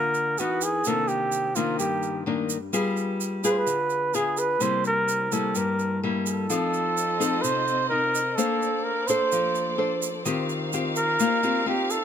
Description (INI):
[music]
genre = bossa nova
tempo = 128 BPM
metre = 4/4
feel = straight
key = unclear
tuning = A4 = 438 Hz
[part]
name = breathy flugelhorn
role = melody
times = 0.0-12.0 s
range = F4 to C5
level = -25 LUFS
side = right 2 dB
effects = none
[part]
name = nylon-string guitar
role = accompaniment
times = 0.0-12.0 s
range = G2 to C5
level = -26 LUFS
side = left 3 dB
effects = none
[part]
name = tube shaker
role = percussion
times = 0.1-12.0 s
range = none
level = -32 LUFS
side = right 8 dB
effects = none
[part]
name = warm symphonic string section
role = sustained chords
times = 6.5-12.0 s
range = Bb3 to F5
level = -32 LUFS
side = left 1 dB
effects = none
[sound]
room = light reverb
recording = close, detailed microphones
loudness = -22 LUFS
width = side -8 dB against mid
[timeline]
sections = 0.0-12.0 A section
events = none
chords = 0.4 Emaj9; 0.9 Cm9; 2.7 G7b9; 4.6 C7; 6.5 F7; 8.4 Bbmaj9; 10.3 Eb69